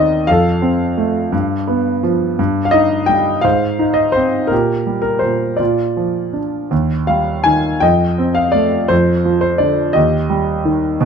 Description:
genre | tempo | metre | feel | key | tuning
classical, lyrical solo piano | 56 BPM (dotted quarters) | 6/8 | rubato | Eb major | A4 = 440 Hz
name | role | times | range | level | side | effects
clear grand piano | solo | 0.0-11.1 s | Eb2 to Ab5 | -13 LUFS | equal | none
room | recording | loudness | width
light reverb | dark, warm production | -13 LUFS | side -6 dB against mid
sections
0.0-11.1 A section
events
none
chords
0.3 F; 1.3 G7; 2.4 Ebadd9/G; 3.4 Ab; 4.5 Gmadd11/Bb; 5.6 Bb; 6.7 Eb; 7.8 F7; 8.9 Dm7/F; 10.0 Eb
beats
| 0.28 1.33 | 2.38 3.44 | 4.51 5.60 | 6.71 7.82 | 8.90 9.96 | 11.00

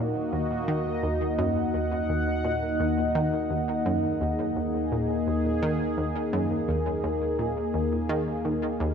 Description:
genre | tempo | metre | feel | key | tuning
ambient, sequencer-driven space music | 85 BPM | 4/4 | straight | Eb minor | A4 = 440 Hz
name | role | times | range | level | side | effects
sweeping resonant pad | sustained chords | 0.0-8.9 s | Bb3 to Gb5 | -26 LUFS | equal | chorus
concert harp | arpeggios | 0.0-1.4 s | none | barely audible | none | none
analog pluck | riff | 0.0-8.9 s | Eb2 to Eb3 | -30 LUFS | equal | chorus, cassette tape, tape echo
fat analog bass | bass | 0.0-8.9 s | Eb2 | -37 LUFS | equal | none
room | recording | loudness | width
wet lush hall reverb, RT60 2.7 s | none | -24 LUFS | side -7 dB against mid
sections
0.0-8.9 A section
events
none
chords
0.0 Ebm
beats
0.68 | 1.39 2.10 2.80 3.51 | 4.21 4.92 5.62 6.33 | 7.04 7.74 8.45

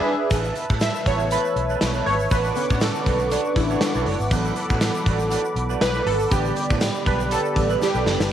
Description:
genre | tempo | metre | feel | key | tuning
1980s-style pop | 120 BPM | 4/4 | swing 55% on 16ths | A major | A4 = 440 Hz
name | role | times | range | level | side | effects
warm analog keys | accompaniment | 0.0-8.3 s | D3 to E5 | -24 LUFS | right 1 dB | chorus, phaser, cassette tape
brassy analog pad | sustained chords | 0.0-8.3 s | G4 to E6 | -28 LUFS | equal | chorus, cassette tape
electric guitar through a small old amp | riff | 0.3-8.2 s | A3 to C#5 | -31 LUFS | right 11 dB | lush chorus, cassette tape, tape echo
vintage muted fingered electric bass | bass | 0.3-8.3 s | F#1 to A2 | -26 LUFS | equal | none
gated 80s drum kit | drums | 0.3-8.3 s | hi-hat, kick drum, snare drum, tambourine | -24 LUFS | equal | cassette tape
egg shaker | percussion | 0.3-8.3 s | none | -44 LUFS | left 10 dB | none
room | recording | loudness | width
light reverb, studio reverb | home recording on cassette | -19 LUFS | side -10 dB against mid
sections
0.3-8.3 A section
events
band accent 0.0-0.3; synth keys solo 0.3-8.3; drum fill 7.8-8.3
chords
0.3 Asus2; 2.3 Bmadd9/A; 4.3 D6/A; 6.3 G/A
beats
| 0.31 0.81 1.31 1.81 | 2.31 2.81 3.31 3.81 | 4.31 4.81 5.31 5.81 | 6.31 6.81 7.31 7.81 | 8.31

